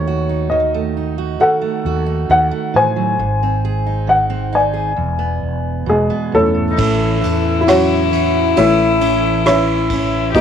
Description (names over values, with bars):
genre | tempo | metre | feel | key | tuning
acoustic folk-pop ballad | 67 BPM | 4/4 | straight | unclear | A4 = 443 Hz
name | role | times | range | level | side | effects
dark upright piano | melody | 0.0-10.4 s | D#3 to G#5 | -16 LUFS | left 1 dB | none
fingerpicked steel-string acoustic guitar | accompaniment | 0.0-10.4 s | E2 to A#4 | -21 LUFS | right 11 dB | none
mellow fretless electric bass | bass | 0.0-10.4 s | E1 to A2 | -21 LUFS | left 1 dB | none
rich cello | second line | 6.7-10.4 s | D#4 to G4 | -18 LUFS | left 14 dB | none
soft brush drum kit | drums | 6.8-10.4 s | kick drum, ride cymbal, rim click | -25 LUFS | right 4 dB | none
room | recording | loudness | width
studio reverb | 1960s-style stereo with parts hard left and right | -13 LUFS | side -8 dB against mid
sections
0.0-6.8 A section; 6.8-10.4 B section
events
none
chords
0.0 D#dim; 3.2 G#; 5.0 E7; 6.8 A